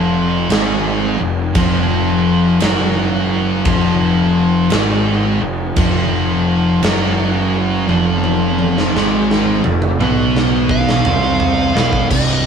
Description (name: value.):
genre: stoner and doom metal.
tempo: 57 BPM.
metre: 4/4.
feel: swing 66% on 8ths.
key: unclear.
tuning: A4 = 441 Hz.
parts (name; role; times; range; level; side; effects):
high-gain distorted guitar; riff; 0.0-12.1 s; F2 to C4; -22 LUFS; right 2 dB; distortion.
thick fuzz guitar; riff; 0.0-12.5 s; C2 to C4; -20 LUFS; left 7 dB; distortion.
thick fuzz guitar; riff; 0.0-12.5 s; C2 to C4; -19 LUFS; right 5 dB; distortion.
fuzz picked electric bass; bass; 0.0-12.5 s; C1 to C2; -20 LUFS; equal; overdrive.
big rock drum kit; drums; 0.5-12.4 s; crash cymbal, kick drum, snare drum, toms; -19 LUFS; right 1 dB; none.
fuzz lead guitar; melody; 10.7-12.5 s; Eb5 to F5; -19 LUFS; right 2 dB; distortion.
room: light reverb.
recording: band playing live in one room.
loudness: -13 LUFS.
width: side -7 dB against mid.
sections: 0.0-12.1 A section.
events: drum fill 7.9-12.1.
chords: 0.0 F5.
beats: 0.52 1.57 2.62 | 3.67 4.72 5.78 6.83 | 7.88 8.94 9.99 11.05 | 12.11.